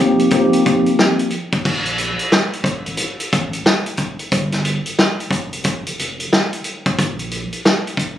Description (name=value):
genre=hip hop, boom-bap hip-hop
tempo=90 BPM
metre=4/4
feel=swing 62% on 16ths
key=unclear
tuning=A4 = 440 Hz
part: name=mellow tine electric piano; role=accompaniment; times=0.0-1.3 s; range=F3 to G4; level=-13 LUFS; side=left 1 dB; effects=medium stereo tremolo, cassette tape
part: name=warm sub bass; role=bass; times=0.0-7.5 s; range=F1 to Bb1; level=-26 LUFS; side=equal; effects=none
part: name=vintage drum kit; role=drums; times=0.2-8.2 s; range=crash cymbal, hi-hat, kick drum, snare drum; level=-18 LUFS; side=equal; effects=none
room=light reverb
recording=recorded on a phone in the room, club reverb, compression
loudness=-16 LUFS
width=side -11 dB against mid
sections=0.0-1.7 A section; 1.7-8.2 B section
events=none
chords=0.0 F7sus4; 1.7 N.C.